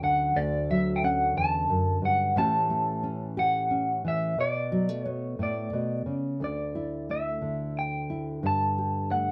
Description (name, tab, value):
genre	acoustic folk duo or small band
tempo	60 BPM (dotted quarters)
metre	6/8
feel	straight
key	D major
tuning	A4 = 440 Hz
part	electric guitar through a small old amp	melody	0.0-9.3 s	D5 to A5	-30 LUFS	equal	tremolo
part	nylon-string guitar	accompaniment	0.0-9.3 s	D2 to G4	-31 LUFS	equal	none
room	light reverb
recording	close, detailed microphones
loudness	-28 LUFS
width	mono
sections	0.0-6.4 A section; 6.4-9.3 B section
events	none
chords	0.0 Dmaj7; 2.4 A7; 4.4 Bm9; 6.4 Dsus2; 8.4 Gsus2